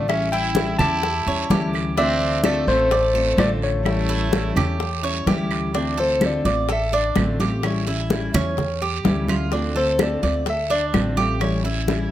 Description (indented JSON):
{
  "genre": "latin, Cuban son and guajira",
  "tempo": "127 BPM",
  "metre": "4/4",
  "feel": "straight",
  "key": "D minor",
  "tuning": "A4 = 442 Hz",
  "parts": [
    { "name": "tine electric piano", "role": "melody", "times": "0.0-10.8 s", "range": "C5 to A5", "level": "-22 LUFS", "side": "left 2 dB", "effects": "none" },
    { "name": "growling trumpet", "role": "second line", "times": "0.0-5.2 s", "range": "A3 to E4", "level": "-30 LUFS", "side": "right 5 dB", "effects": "none" },
    { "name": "fingerpicked steel-string acoustic guitar", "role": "accompaniment", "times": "0.0-12.1 s", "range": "D3 to F4", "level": "-25 LUFS", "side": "left 2 dB", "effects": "none" },
    { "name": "upright bass", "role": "bass", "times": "0.0-12.1 s", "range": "A1 to E2", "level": "-25 LUFS", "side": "equal", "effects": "none" },
    { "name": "bongos", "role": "percussion", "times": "0.1-12.1 s", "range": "none", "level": "-28 LUFS", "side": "left 7 dB", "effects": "none" },
    { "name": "claves", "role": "percussion", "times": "0.1-11.6 s", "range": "none", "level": "-33 LUFS", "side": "right 6 dB", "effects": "none" },
    { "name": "congas", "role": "percussion", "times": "0.1-12.1 s", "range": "none", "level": "-25 LUFS", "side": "right 1 dB", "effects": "none" },
    { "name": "guiro", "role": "percussion", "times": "0.1-12.1 s", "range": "none", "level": "-35 LUFS", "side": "right 8 dB", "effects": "none" },
    { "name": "Cuban tres", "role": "arpeggios", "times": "0.3-12.1 s", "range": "C#4 to D5", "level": "-27 LUFS", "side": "right 5 dB", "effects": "none" }
  ],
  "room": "moderate large studio reverb, RT60 0.9 s",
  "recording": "close, detailed microphones",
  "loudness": "-18 LUFS",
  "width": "side -12 dB against mid",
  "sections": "0.0-5.7 A section; 5.7-12.1 B section",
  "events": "tine electric piano solo 5.7-12.1",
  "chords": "0.1 A7; 2.0 Dm7; 3.9 A7; 5.7 Dm7; 7.6 A7; 9.5 Dm7; 11.4 A7"
}